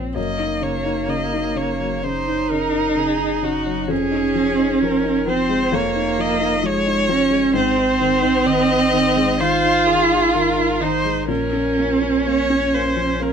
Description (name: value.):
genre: neoclassical piano and strings.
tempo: 64 BPM.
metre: 4/4.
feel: rubato.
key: unclear.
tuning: A4 = 438 Hz.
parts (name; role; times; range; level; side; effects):
dark cello; second line; 0.0-13.3 s; Ab3 to F4; -19 LUFS; right 3 dB; none.
felt-muted upright piano; accompaniment; 0.0-13.3 s; F2 to Db5; -24 LUFS; left 5 dB; none.
punchy sub bass; bass; 0.0-13.3 s; F1 to Bb1; -32 LUFS; left 2 dB; none.
warm viola; accompaniment; 0.2-13.3 s; Gb4 to Eb5; -23 LUFS; right 1 dB; none.
room: light reverb.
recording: none.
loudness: -16 LUFS.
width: side -7 dB against mid.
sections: 0.2-13.3 A section.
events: none.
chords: 0.2 Gb6; 3.9 Dbadd9/F; 7.6 Ab; 11.3 Bbm.